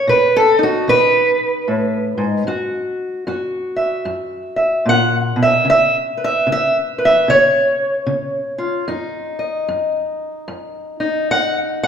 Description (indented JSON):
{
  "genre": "acoustic country blues, solo or duo",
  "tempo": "75 BPM",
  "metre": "4/4",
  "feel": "swing 63% on 8ths",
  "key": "unclear",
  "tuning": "A4 = 439 Hz",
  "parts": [
    { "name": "fingerpicked steel-string acoustic guitar", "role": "solo", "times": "0.0-11.9 s", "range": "F#2 to F#5", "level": "-15 LUFS", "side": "equal", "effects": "none" }
  ],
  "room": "wet recital hall reverb, RT60 1.6 s",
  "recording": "recorded in a church or concert hall",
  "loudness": "-14 LUFS",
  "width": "side -7 dB against mid",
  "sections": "0.0-11.9 A section",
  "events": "steel-string acoustic guitar solo 0.0-11.9",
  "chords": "0.0 B7; 2.5 F#7; 5.7 C#7(no3); 8.9 D#m/F#",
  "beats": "0.06 0.86 1.66 | 2.46 3.27 4.07 4.87 | 5.67 6.47 7.27 8.08 | 8.88 9.68 10.48 11.29"
}